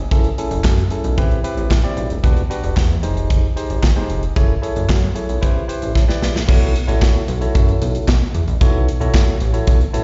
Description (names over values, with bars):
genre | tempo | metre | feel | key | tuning
early-eighties boogie funk | 113 BPM | 4/4 | straight | unclear | A4 = 445 Hz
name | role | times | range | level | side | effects
chorused synth bass | bass | 0.0-10.0 s | D#1 to B2 | -22 LUFS | equal | none
barky tine electric piano | accompaniment | 0.1-10.0 s | C4 to A5 | -26 LUFS | equal | plate reverb, slapback echo
modern studio drum kit | drums | 0.1-10.0 s | crash cymbal, handclaps, hi-hat, kick drum, snare drum | -19 LUFS | equal | none
room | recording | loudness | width
light reverb | live gig heard through the venue's PA, recital hall reverb, nothing above 7.6 kHz | -17 LUFS | mono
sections
0.0-6.5 A section; 6.5-10.0 B section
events
drum fill 6.0-6.5; tine electric piano fill 9.7-10.0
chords
0.1 F#m9; 1.2 Am9; 2.2 Em9; 3.0 Fm9; 4.4 F#m9; 5.4 Am9; 6.5 B9sus4